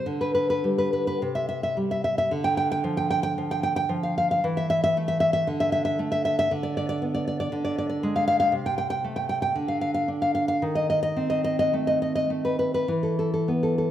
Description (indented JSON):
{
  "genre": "romantic piece for solo classical guitar",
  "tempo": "50-60 BPM",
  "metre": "2/4",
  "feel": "rubato",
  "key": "unclear",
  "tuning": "A4 = 440 Hz",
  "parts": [
    { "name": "nylon-string guitar", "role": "solo", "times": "0.0-13.9 s", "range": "C3 to G5", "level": "-22 LUFS", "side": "equal", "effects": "none" }
  ],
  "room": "moderate recital hall reverb, RT60 1.7 s",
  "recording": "recorded in a church or concert hall",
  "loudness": "-22 LUFS",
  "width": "side -11 dB against mid",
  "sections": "0.0-13.9 A section",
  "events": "none",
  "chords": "0.1 G5/D; 1.2 C5; 2.3 Dm; 4.4 A5/E; 5.5 D5; 6.5 Bm/D; 7.5 Ddim; 8.5 Am/C; 9.6 N.C.; 10.6 B7b9/D#; 12.9 E5"
}